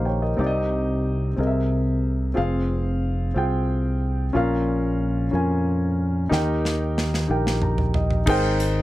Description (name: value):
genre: slow gospel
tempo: 61 BPM (dotted quarters)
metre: 6/8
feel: straight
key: unclear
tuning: A4 = 440 Hz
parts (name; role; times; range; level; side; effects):
- warm grand piano; accompaniment; 0.0-8.8 s; Bb2 to Bb5; -24 LUFS; left 1 dB; none
- fingered electric bass; bass; 0.0-8.8 s; F1 to F2; -23 LUFS; equal; none
- modern studio drum kit; drums; 6.3-8.8 s; crash cymbal, hi-hat, kick drum, snare drum, toms; -26 LUFS; right 1 dB; none
room: light reverb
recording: dark, warm production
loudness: -20 LUFS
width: side -16 dB against mid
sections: 0.0-8.3 A section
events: drum fill 6.3-8.3; grand piano fill 7.3-8.3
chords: 0.4 Cm; 1.4 Caug7; 2.4 Fm; 4.3 Bbm; 6.3 Eb; 8.3 Abmaj9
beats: | 0.39 1.38 | 2.37 3.35 | 4.34 5.33 | 6.31 7.30 | 8.28